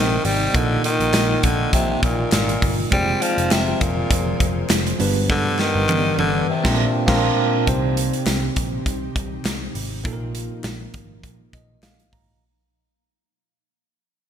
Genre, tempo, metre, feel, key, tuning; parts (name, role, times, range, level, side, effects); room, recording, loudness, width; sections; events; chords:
1980s-style pop; 101 BPM; 4/4; swing 55% on 16ths; A4 = 440 Hz
growling tenor saxophone; melody; 0.0-7.0 s; Bb2 to G3; -22 LUFS; left 1 dB; ping-pong delay
bell-like tine electric piano; accompaniment; 0.0-12.4 s; G2 to Bb5; -24 LUFS; right 2 dB; medium stereo tremolo
ethereal airy pad; sustained chords; 0.1-12.4 s; C3 to D5; -31 LUFS; left 1 dB; ensemble chorus, built-in reverb
vintage muted picked electric bass; bass; 0.0-12.3 s; F1 to C2; -26 LUFS; equal
modern studio drum kit; drums; 0.2-12.3 s; crash cymbal, hi-hat, kick drum, snare drum, tambourine, toms; -22 LUFS; equal; gated reverb
group handclap; percussion; 1.1-12.0 s; -37 LUFS; left 6 dB
moderate lush hall reverb, RT60 2.8 s; bright 1980s-style digital production; -18 LUFS; side -8 dB against mid
0.0-7.7 A section; 7.7-12.4 B section
drum fill 5.3-7.7; band accent 6.5-7.7; fade-out 7.7-12.4; tine electric piano fill 11.2-12.4
0.0 Cm; 0.5 Bbsus4; 2.9 Fm; 5.0 G; 6.5 Bbadd9; 7.7 Cm; 10.0 Bbsus4